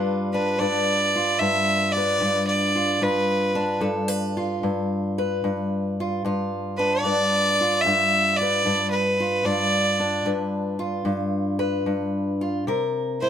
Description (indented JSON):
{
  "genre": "acoustic country blues, solo or duo",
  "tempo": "75 BPM",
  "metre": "4/4",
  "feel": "swing 67% on 8ths",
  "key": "G mixolydian",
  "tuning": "A4 = 441 Hz",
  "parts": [
    { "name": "fingerpicked steel-string acoustic guitar", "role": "accompaniment", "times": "0.0-13.3 s", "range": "G2 to B4", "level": "-24 LUFS", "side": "left 1 dB", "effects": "none" },
    { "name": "clear fiddle", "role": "melody", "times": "0.3-13.3 s", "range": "B4 to E5", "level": "-21 LUFS", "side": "right 1 dB", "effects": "none" }
  ],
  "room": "light reverb",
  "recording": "close, detailed microphones",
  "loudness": "-20 LUFS",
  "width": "side -9 dB against mid",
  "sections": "0.0-13.3 A section",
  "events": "none",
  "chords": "0.0 G7; 12.7 C7(no3)"
}